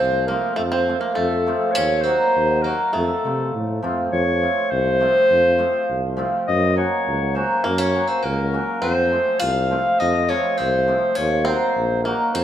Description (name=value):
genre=balkan folk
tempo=102 BPM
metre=2/4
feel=straight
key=F phrygian dominant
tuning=A4 = 440 Hz
part: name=warm clarinet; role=melody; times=0.0-12.4 s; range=A4 to F5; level=-21 LUFS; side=left 1 dB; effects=none
part: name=bluegrass banjo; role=second line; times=0.0-3.8, 7.6-12.4 s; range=A3 to F4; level=-27 LUFS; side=right 3 dB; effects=none
part: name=cimbalom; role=accompaniment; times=0.0-12.4 s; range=F3 to Gb4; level=-24 LUFS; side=right 1 dB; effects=none
part: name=warm tuba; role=bass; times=0.0-12.4 s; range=Bb1 to C3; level=-24 LUFS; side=equal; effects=none
room=moderate scoring stage reverb, RT60 1.7 s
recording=minimal, uncompressed stereo recording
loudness=-17 LUFS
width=side -10 dB against mid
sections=0.0-4.1 A section; 4.1-12.4 A section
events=none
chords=0.0 F; 1.8 Ebm; 3.0 F; 6.5 Gb; 8.8 F; 11.2 Ebm